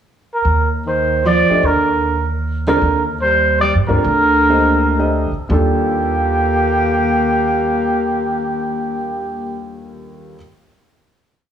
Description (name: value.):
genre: jazz.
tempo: 107-153 BPM.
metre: 3/4.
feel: swing 64% on 8ths.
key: Eb lydian.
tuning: A4 = 440 Hz.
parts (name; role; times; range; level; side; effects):
dark trumpet; melody; 0.3-9.6 s; G4 to D5; -17 LUFS; right 1 dB; analog delay.
upright bass; bass; 0.5-10.3 s; D2 to G2; -20 LUFS; equal; none.
clear alto saxophone; second line; 0.9-9.6 s; D3 to Bb3; -20 LUFS; right 2 dB; none.
warm concert grand piano; accompaniment; 1.5-10.4 s; Eb2 to Eb5; -23 LUFS; left 2 dB; none.
room: moderate spring reverb, RT60 1.7 s, small room ambience.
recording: cassette tape, studio reverb.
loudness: -14 LUFS.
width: side -8 dB against mid.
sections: 0.0-0.5 pickup bar; 0.5-5.5 A section; 5.5-8.9 final chord.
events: slowing down 2.8-5.5.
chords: 0.5 Ebmaj7(no3); 2.8 Gm; 5.5 Ebmaj9#11.